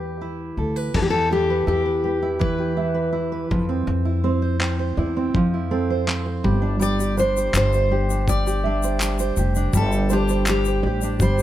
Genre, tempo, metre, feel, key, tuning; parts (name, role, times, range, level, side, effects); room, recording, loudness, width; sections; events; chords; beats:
acoustic pop; 82 BPM; 4/4; straight; A4 = 440 Hz
fingerpicked steel-string acoustic guitar; accompaniment; 0.0-11.4 s; E3 to C5; -24 LUFS; right 3 dB
nylon-string guitar; arpeggios; 0.0-11.0 s; A4 to E5; -32 LUFS; right 4 dB
upright bass; bass; 0.0-11.4 s; F1 to F2; -23 LUFS; left 1 dB
dusty soul sampler-style drum kit; drums; 0.9-11.4 s; crash cymbal, handclaps, kick drum; -25 LUFS; left 1 dB
fingerpicked steel-string acoustic guitar; melody; 1.0-11.4 s; G4 to D5; -23 LUFS; left 2 dB
egg shaker; percussion; 6.8-11.4 s; -34 LUFS; left 6 dB
little or no reverb; -19 LUFS; side -13 dB against mid
1.0-11.4 A section
0.0 Em; 3.5 Fmaj7; 6.4 Gsus4
0.22 | 0.95 1.68 2.42 3.15 | 3.88 4.61 5.34 6.08 | 6.81 7.54 8.27 9.00 | 9.73 10.47 11.20